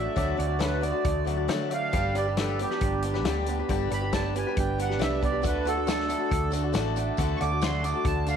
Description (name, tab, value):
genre	folk rock and heartland rock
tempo	137 BPM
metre	4/4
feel	straight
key	D major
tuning	A4 = 438 Hz
part	accordion	melody	0.0-8.4 s	G4 to D6	-31 LUFS	right 3 dB	tape echo
part	picked swing-style acoustic guitar	accompaniment	0.0-8.4 s	G2 to D5	-31 LUFS	left 10 dB	none
part	mellow tonewheel organ	sustained chords	0.0-8.4 s	D4 to D5	-39 LUFS	equal	slow rotary speaker
part	electric guitar through a small old amp	riff	0.0-8.4 s	G2 to G4	-32 LUFS	right 13 dB	phaser
part	hollow-body short-scale fingered electric bass	bass	0.0-8.4 s	G1 to D3	-30 LUFS	right 1 dB	none
part	vintage drum kit	drums	0.2-8.4 s	hi-hat, kick drum, snare drum	-31 LUFS	left 2 dB	none
part	tambourine	percussion	5.4-8.4 s	none	-46 LUFS	right 16 dB	none
room	light reverb, small room ambience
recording	1960s-style stereo with parts hard left and right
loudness	-24 LUFS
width	side -8 dB against mid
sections	0.0-8.4 A section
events	accordion solo 0.0-8.4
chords	0.0 D; 1.9 G; 5.4 D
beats	| 0.16 0.60 1.04 1.49 | 1.93 2.37 2.81 3.25 | 3.69 4.13 4.57 5.00 | 5.44 5.88 6.31 6.75 | 7.18 7.62 8.05